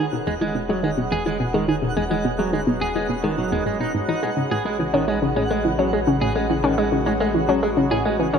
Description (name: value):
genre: ambient, sequencer-driven space music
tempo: 106 BPM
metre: 4/4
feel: straight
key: unclear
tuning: A4 = 441 Hz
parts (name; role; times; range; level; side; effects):
- lush unison pad; sustained chords; 0.0-8.4 s; G#3 to D#5; -28 LUFS; left 1 dB; chorus
- semi-hollow electric guitar; arpeggios; 0.0-8.4 s; D#3 to G#4; -25 LUFS; right 2 dB; auto-pan, analog delay
- analog pluck; riff; 0.0-8.4 s; E2 to C#4; -22 LUFS; left 1 dB; chorus, analog delay
- round analog bass; bass; 0.0-8.4 s; E1 to A1; -33 LUFS; equal; none
- twinkling granular texture; texture; 0.0-8.4 s; F#5; -33 LUFS; right 5 dB; built-in reverb
room: wet plate reverb, RT60 2.6 s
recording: echo-heavy mix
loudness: -19 LUFS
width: side -7 dB against mid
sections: 0.0-8.4 A section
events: fade-in on analog synth pad 0.0-8.4; filter sweep on synth arpeggio sound 0.0-8.4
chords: 0.0 E; 4.2 A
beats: 0.27 0.84 1.40 | 1.97 2.53 3.10 3.67 | 4.23 4.80 5.36 5.93 | 6.50 7.06 7.63 8.19